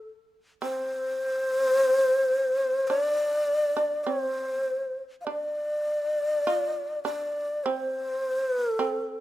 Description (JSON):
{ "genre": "japanese traditional, Japanese chamber music", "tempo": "51 BPM", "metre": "2/4", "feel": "uneven beats, rubato", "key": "unclear", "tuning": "A4 = 441 Hz", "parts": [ { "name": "breathy mellow long shakuhachi", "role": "melody", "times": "0.0-9.2 s", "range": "C5 to F5", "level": "-25 LUFS", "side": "left 1 dB", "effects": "none" }, { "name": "shamisen", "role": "second line", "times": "0.6-9.2 s", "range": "C4 to F4", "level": "-33 LUFS", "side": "right 6 dB", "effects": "none" } ], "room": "light reverb", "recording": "close, detailed microphones", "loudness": "-24 LUFS", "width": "side -15 dB against mid", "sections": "0.0-9.2 A section", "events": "none", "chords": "none" }